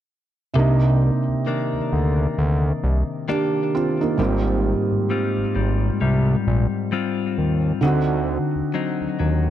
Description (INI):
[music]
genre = R&B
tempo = 66 BPM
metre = 4/4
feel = swing 58% on 16ths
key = C minor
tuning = A4 = 440 Hz
[part]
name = felt-muted upright piano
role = accompaniment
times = 0.5-9.5 s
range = Ab2 to G4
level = -23 LUFS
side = right 4 dB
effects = none
[part]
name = direct-recorded clean electric guitar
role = arpeggios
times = 0.6-9.5 s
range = Ab2 to F4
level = -24 LUFS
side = left 6 dB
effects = phaser, digital delay
[part]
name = fat analog bass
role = bass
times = 0.6-9.5 s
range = Ab1 to Eb2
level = -20 LUFS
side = equal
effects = none
[sound]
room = light reverb, studio ambience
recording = dark, warm production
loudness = -19 LUFS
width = side -11 dB against mid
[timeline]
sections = 0.6-9.5 A section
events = none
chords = 0.6 Cm9; 4.2 Abmaj13; 7.8 D7b9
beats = | 0.56 1.47 2.38 3.28 | 4.19 5.10 6.01 6.92 | 7.83 8.74